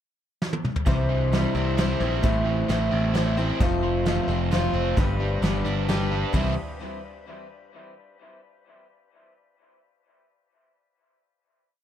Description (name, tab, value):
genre	folk rock and heartland rock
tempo	131 BPM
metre	3/4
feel	straight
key	C major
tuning	A4 = 440 Hz
part	soft brush drum kit	drums	0.4-6.4 s	hi-hat, kick drum, snare drum, toms	-28 LUFS	equal	dub echo
part	picked steel-string acoustic guitar	accompaniment	0.9-6.5 s	A2 to C5	-28 LUFS	left 3 dB	dub echo
part	overdriven semi-hollow guitar	riff	0.9-6.5 s	F2 to G4	-27 LUFS	right 2 dB	none
part	modern bright picked electric bass	bass	0.9-6.6 s	F1 to C2	-26 LUFS	equal	none
room	light reverb, small room ambience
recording	echo-heavy mix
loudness	-21 LUFS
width	side -10 dB against mid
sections	0.0-0.9 pickup bar; 0.9-6.3 verse; 6.3-7.7 final chord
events	drum fill 0.4-0.9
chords	0.0 N.C.; 0.9 C; 2.2 Am; 3.6 F; 5.0 G; 6.3 C